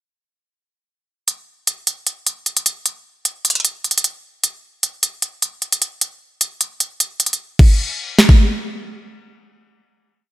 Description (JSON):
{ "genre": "hip hop", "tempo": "152 BPM", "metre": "4/4", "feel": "half-time", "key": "none", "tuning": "none", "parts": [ { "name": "trap drum kit", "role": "drums", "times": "1.3-8.4 s", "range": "crash cymbal, hi-hat, kick drum, snare drum", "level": "-13 LUFS", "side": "equal", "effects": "overdrive" } ], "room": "light reverb", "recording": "none", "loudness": "-16 LUFS", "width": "side -15 dB against mid", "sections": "1.3-7.6 breakdown; 7.6-10.3 final hit", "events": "none", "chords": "none" }